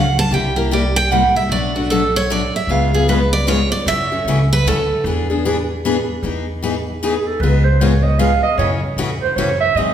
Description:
acoustic string swing (jazz manouche); 152 BPM; 3/4; swing 62% on 8ths; E major from 6.2 s; A4 = 440 Hz
picked steel-string acoustic guitar; melody; 0.0-5.0 s; F#4 to A5; -17 LUFS; right 2 dB
picked steel-string acoustic guitar; accompaniment; 0.0-9.9 s; B2 to G#4; -20 LUFS; left 3 dB
upright bass; bass; 0.0-9.9 s; B1 to G#2; -19 LUFS; equal
breathy clarinet; second line; 7.0-9.9 s; G#4 to E#5; -18 LUFS; right 5 dB
wet recital hall reverb, RT60 1.7 s; recorded in a church or concert hall; -14 LUFS; side -9 dB against mid
0.0-6.2 A section; 6.2-9.9 A section
steel-string acoustic guitar solo 0.0-6.2; clarinet solo 6.2-9.9
0.3 C7; 1.5 Bm7; 2.7 C#7; 3.9 F#m7; 5.0 E7; 6.2 Emaj7; 7.4 C#7; 8.6 F#m7
| 0.31 0.70 1.10 | 1.50 1.89 2.29 | 2.68 3.08 3.47 | 3.87 4.26 4.65 | 5.05 5.44 5.84 | 6.23 6.62 7.02 | 7.41 7.80 8.19 | 8.58 8.97 9.37 | 9.76

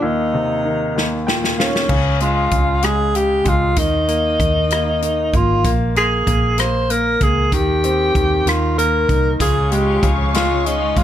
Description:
six-eight pop ballad; 64 BPM (dotted quarters); 6/8; straight; A4 = 440 Hz
mellow tenor saxophone; melody; 0.0-11.0 s; Db4 to C5; -18 LUFS; equal
clear concert grand piano; accompaniment; 0.0-11.0 s; Eb2 to G5; -22 LUFS; equal
natural country drum kit; drums; 1.0-11.0 s; crash cymbal, hi-hat, kick drum, rim click, snare drum; -21 LUFS; equal
vintage muted fingered electric bass; bass; 1.9-11.0 s; Ab1 to Eb2; -20 LUFS; right 1 dB
dark symphonic string section; sustained chords; 9.4-11.0 s; Ab3 to Db6; -26 LUFS; left 2 dB
clean electric guitar; arpeggios; 9.4-11.0 s; Db3 to F4; -27 LUFS; left 7 dB; ensemble chorus, ping-pong delay
light reverb; -14 LUFS; side -11 dB against mid
0.0-1.9 A section; 1.9-11.0 B section
grand piano fill 1.0-1.9; drum fill 1.0-1.9
0.0 Cm/Eb; 1.0 Eb5; 1.9 Db; 3.8 Ebsus4; 5.6 Bbm7; 7.5 Eb6; 8.5 Eb5; 9.4 Db
| 0.02 0.96 | 1.90 2.83 | 3.77 4.71 | 5.65 6.58 | 7.52 8.46 | 9.40 10.34

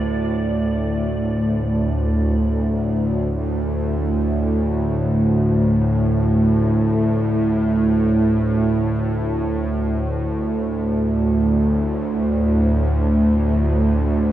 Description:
ambient; free time; A4 = 439 Hz
bowed-like drone; drone; 0.0-14.3 s; D2 to A2; -17 LUFS; equal; built-in reverb
wet huge ambient reverb, RT60 7.6 s; worn, warbling old tape, cassette tape, warbly pitch drift, small room ambience; -17 LUFS; side -12 dB against mid
0.1-14.3 A section
0.1 D5
free time

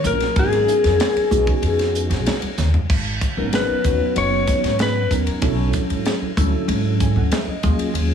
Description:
electric jazz fusion; 95 BPM; 4/4; straight; A4 = 441 Hz
lightly driven lead guitar; melody; 0.0-5.1 s; G#4 to C#5; -20 LUFS; left 4 dB; slapback echo, plate reverb
bright tine electric piano; accompaniment; 0.0-8.1 s; F#3 to G#5; -24 LUFS; right 1 dB; medium stereo tremolo, phaser, plate reverb
upright bass; bass; 0.0-8.1 s; F#1 to G#2; -22 LUFS; right 1 dB
tight funk drum kit; drums; 0.0-8.1 s; crash cymbal, hi-hat, kick drum, ride cymbal, snare drum, toms; -23 LUFS; equal
congas; percussion; 0.4-8.0 s; -28 LUFS; right 2 dB
light reverb; small room ambience; -17 LUFS; side -8 dB against mid
0.0-2.9 A section; 2.9-8.1 B section
drum fill 2.4-2.9; lead electric guitar solo 2.9-8.1; tine electric piano fill 6.7-8.0
0.4 G#m11; 5.4 Bm11
| 0.36 0.99 1.62 2.26 | 2.89 3.52 4.16 4.79 | 5.42 6.06 6.69 7.33 | 7.96

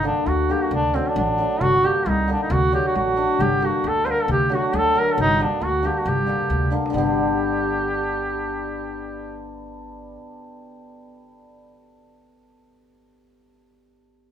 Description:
balkan folk, Balkan wedding band; 135 BPM; 2/4; swing 55% on 16ths; A4 = 444 Hz
clear duduk; melody; 0.0-9.5 s; C4 to C5; -21 LUFS; right 1 dB
hammered dulcimer; accompaniment; 0.0-12.1 s; D3 to D4; -26 LUFS; left 2 dB
upright bass; bass; 0.0-10.2 s; G1 to D2; -27 LUFS; equal
darbuka; percussion; 0.1-7.2 s; -28 LUFS; right 1 dB
wet large studio reverb, RT60 0.9 s; band playing live in one room; -18 LUFS; side -9 dB against mid
0.0-6.9 A section; 6.9-8.7 B section
drum fill 6.4-6.9
0.0 Gm; 0.7 D; 1.6 Gm; 2.5 D; 3.4 Gm; 4.3 D; 5.2 Gm; 6.9 G
0.27 | 0.72 1.17 | 1.61 2.06 | 2.50 2.95 | 3.40 3.84 | 4.28 4.73 | 5.17 5.61 | 6.06 6.50 | 6.94 7.38 | 7.82 8.26

